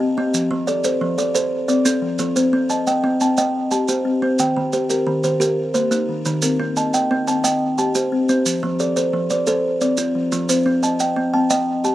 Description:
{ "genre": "southern african traditional, mbira-style interlocking cycle", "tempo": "118 BPM (dotted quarters)", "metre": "12/8", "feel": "straight", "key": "C dorian", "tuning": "A4 = 436 Hz", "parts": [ { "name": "buzzing kalimba", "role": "arpeggios", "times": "0.0-11.9 s", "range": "Eb3 to G5", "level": "-20 LUFS", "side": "left 3 dB", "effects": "none" }, { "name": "kalimba", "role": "arpeggios", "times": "0.0-11.9 s", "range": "Eb3 to A5", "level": "-20 LUFS", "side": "right 3 dB", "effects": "none" }, { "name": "maracas", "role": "percussion", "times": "0.3-11.9 s", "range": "none", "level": "-25 LUFS", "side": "right 4 dB", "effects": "none" } ], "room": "little or no reverb", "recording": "recorded outdoors, with no room sound", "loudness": "-17 LUFS", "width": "side -14 dB against mid", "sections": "0.0-2.4 A section; 2.4-11.9 A section", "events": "none", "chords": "0.3 F; 2.4 Cm; 4.4 Eb; 6.4 Cm; 8.5 F; 10.5 Cm" }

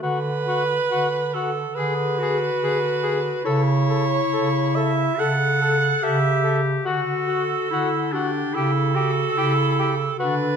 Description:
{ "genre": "classical, lyrical piece for single-reed quartet", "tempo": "71 BPM", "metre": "4/4", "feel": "rubato", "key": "D major", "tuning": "A4 = 439 Hz", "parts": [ { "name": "clear alto saxophone", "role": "second line", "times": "0.0-10.6 s", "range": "G4 to F#5", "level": "-24 LUFS", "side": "right 5 dB", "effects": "none" }, { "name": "warm tenor saxophone", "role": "accompaniment", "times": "0.0-10.3 s", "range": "F#4 to A4", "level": "-27 LUFS", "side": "left 4 dB", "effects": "none" }, { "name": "warm bass clarinet", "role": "bass", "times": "0.0-10.6 s", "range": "C#3 to D3", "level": "-25 LUFS", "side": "right 2 dB", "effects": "none" }, { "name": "clear clarinet", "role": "melody", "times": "1.8-10.6 s", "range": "D4 to A4", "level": "-25 LUFS", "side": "left 9 dB", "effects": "none" } ], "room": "wet recital hall reverb, RT60 1.5 s", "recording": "none", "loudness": "-19 LUFS", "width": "side -7 dB against mid", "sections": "0.0-10.6 A section", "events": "none", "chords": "0.0 D; 1.8 Bm6/D; 3.5 A7/C#; 6.9 D; 8.5 A7/C#" }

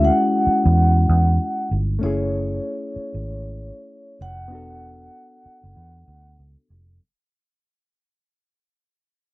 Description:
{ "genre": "lush 1970s-style soul", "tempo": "96 BPM", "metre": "4/4", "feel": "swing 58% on 16ths", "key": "unclear", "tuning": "A4 = 444 Hz", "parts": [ { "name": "vibraphone with soft mallets", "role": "melody", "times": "0.0-6.3 s", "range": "C#5 to F#5", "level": "-24 LUFS", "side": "right 1 dB", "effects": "none" }, { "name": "barky reed electric piano", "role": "accompaniment", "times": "0.0-7.0 s", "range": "G#3 to A4", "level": "-25 LUFS", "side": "left 3 dB", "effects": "none" }, { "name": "vintage muted fingered electric bass", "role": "bass", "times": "0.0-7.0 s", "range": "E1 to E2", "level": "-19 LUFS", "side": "equal", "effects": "none" } ], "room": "little or no reverb", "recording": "dry, close 1970s-style studio recording", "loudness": "-17 LUFS", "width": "side -20 dB against mid", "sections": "0.0-7.0 A section", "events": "fade-out 0.0-7.0", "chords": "0.0 Dmaj9#11 (rootless); 2.0 F#m7; 4.5 E9sus4" }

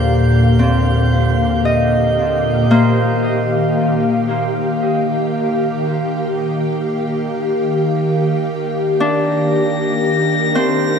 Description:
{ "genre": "ambient", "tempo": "57 BPM", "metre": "3/4", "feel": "straight", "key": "Eb major", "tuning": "A4 = 438 Hz", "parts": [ { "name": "ethereal airy pad", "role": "sustained chords", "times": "0.0-11.0 s", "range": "Bb2 to F5", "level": "-16 LUFS", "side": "equal", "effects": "ensemble chorus, built-in reverb, shimmer reverb" }, { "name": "Celtic harp", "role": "arpeggios", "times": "0.0-11.0 s", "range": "Bb3 to Eb5", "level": "-20 LUFS", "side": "left 1 dB", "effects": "diffuse ambient delay, shimmer reverb" }, { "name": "warm sub bass", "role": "bass", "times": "0.0-2.7 s", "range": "Eb2", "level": "-22 LUFS", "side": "right 1 dB", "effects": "none" }, { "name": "pedal harmonium", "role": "drone", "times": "0.0-11.0 s", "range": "D3 to Bb3", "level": "-26 LUFS", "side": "right 2 dB", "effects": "none" }, { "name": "drifting glass-harmonics texture", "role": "texture", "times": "0.0-2.7, 9.3-11.0 s", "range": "G6 to Bb6", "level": "-26 LUFS", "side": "left 1 dB", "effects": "chorus, built-in reverb, shimmer reverb" } ], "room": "wet cathedral reverb, RT60 4.8 s", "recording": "none", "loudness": "-14 LUFS", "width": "side -6 dB against mid", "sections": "0.0-2.7 A section; 2.7-11.0 B section", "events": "fade-in on harmonium 2.7-11.0", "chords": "0.0 Ebmaj9; 2.7 Ebadd9; 9.0 Ebmaj9" }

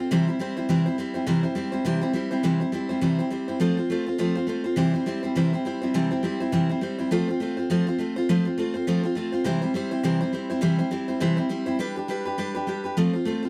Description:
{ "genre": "rock", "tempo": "205 BPM", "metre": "4/4", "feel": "swing 58% on 8ths", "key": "C major", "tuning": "A4 = 441 Hz", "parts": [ { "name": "picked steel-string acoustic guitar", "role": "solo", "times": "0.0-13.5 s", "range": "C3 to C5", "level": "-25 LUFS", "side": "equal", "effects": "none" } ], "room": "moderate small room reverb, RT60 0.5 s", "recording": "none", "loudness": "-25 LUFS", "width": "mono", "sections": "0.0-2.4 A section; 2.4-13.5 B section", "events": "none", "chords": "0.1 C; 3.6 F; 4.8 C; 7.1 F; 9.5 C; 11.8 G; 13.0 F" }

